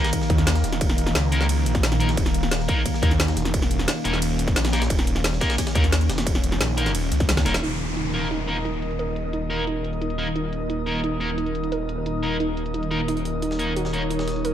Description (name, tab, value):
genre	dark technical drum and bass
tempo	176 BPM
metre	4/4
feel	straight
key	unclear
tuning	A4 = 443 Hz
part	deep dark ambient pad	sustained chords	0.0-14.5 s	Eb3 to Eb5	-28 LUFS	left 1 dB	chorus, built-in reverb, sidechain pumping
part	distorted electric guitar	stabs	0.0-14.0 s	Bb3 to Bb4	-29 LUFS	left 1 dB	distortion, tape echo
part	breakbeat sampler-style drum kit	drums	0.0-7.6, 13.1-14.5 s	hi-hat, snare drum	-34 LUFS	equal	high-pass filter on snare, high-pass filter on hats
part	drum and bass drum kit	drums	0.1-14.5 s	hi-hat, ride cymbal, snare drum, toms	-27 LUFS	equal	overdrive, low-pass filter on snare, low-pass filter on hats, low-pass filter on cymbals, low-pass filter on toms
part	electronic kick drum	drums	0.1-7.4 s	none	-24 LUFS	equal	distortion
part	snarling distorted saw bass	bass	0.3-14.5 s	Eb1 to Eb2	-25 LUFS	equal	distortion, overdrive, sidechain pumping
part	warbly dusty pluck	arpeggios	7.6-14.5 s	Eb4 to Bb4	-31 LUFS	right 4 dB	chorus, sidechain pumping, tape echo
part	downlifter	sound effects	7.6-10.4 s	none	-33 LUFS	left 1 dB	none
part	airy breathy pad	texture	7.6-14.5 s	Eb4 to Eb6	-30 LUFS	equal	chorus, sidechain pumping
room	light reverb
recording	none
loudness	-20 LUFS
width	side -10 dB against mid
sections	0.0-7.6 A section; 7.6-14.5 B section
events	drop 0.0-7.6; drum fill 7.3-7.6; band accent 7.5; filter sweep on synth arpeggio sound 7.6-14.5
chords	0.0 Eb5